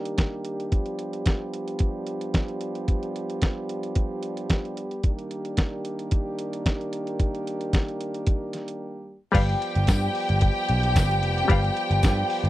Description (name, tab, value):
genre	disco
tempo	111 BPM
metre	4/4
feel	straight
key	unclear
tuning	A4 = 440 Hz
part	warm French horn section	sustained chords	0.0-12.5 s	Eb3 to D5	-30 LUFS	right 1 dB	low-pass filter
part	lo-fi sampler-style drum kit	drums	0.1-12.5 s	crash cymbal, hi-hat, kick drum, snare drum	-23 LUFS	equal	none
part	rich studio string section	second line	9.3-12.5 s	G4 to G5	-26 LUFS	left 2 dB	none
part	muted clav	accompaniment	9.3-12.5 s	G3 to F5	-25 LUFS	left 4 dB	overdrive
part	picked electric bass	bass	9.3-12.5 s	F1 to G2	-23 LUFS	equal	none
part	tambourine	percussion	9.9-12.2 s	none	-40 LUFS	left 7 dB	none
room	little or no reverb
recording	dry, close 1970s-style studio recording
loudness	-23 LUFS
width	side -15 dB against mid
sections	0.0-9.3 A section; 9.3-12.5 B section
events	filter sweep on French horn section 0.0-9.3; break 8.8-9.3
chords	0.0 Ebmaj7; 0.7 G7; 5.0 Ebmaj7; 9.3 G7